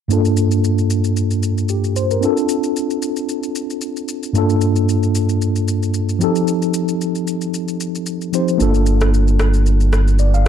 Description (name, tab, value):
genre	amapiano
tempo	113 BPM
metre	4/4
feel	swing 55% on 16ths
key	G minor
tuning	A4 = 440 Hz
part	mellow tine electric piano	accompaniment	0.1-10.5 s	G2 to F5	-17 LUFS	equal	medium stereo tremolo, low-pass filter
part	electronic shaker and rim click	drums	0.1-10.5 s	none	-27 LUFS	left 2 dB	overdrive
part	sub bass with octave	bass	8.6-10.5 s	G1	-14 LUFS	equal	none
room	light reverb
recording	dark, warm production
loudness	-15 LUFS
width	side -9 dB against mid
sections	0.1-10.5 A section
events	filter sweep on tine electric piano 0.1-10.5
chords	0.1 Gm9; 2.2 Dm7; 4.4 Gm9; 6.2 F9; 8.6 Gm9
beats	| 0.10 0.64 1.17 1.70 | 2.23 2.76 3.29 3.82 | 4.35 4.88 5.41 5.95 | 6.48 7.01 7.54 8.07 | 8.60 9.13 9.66 10.19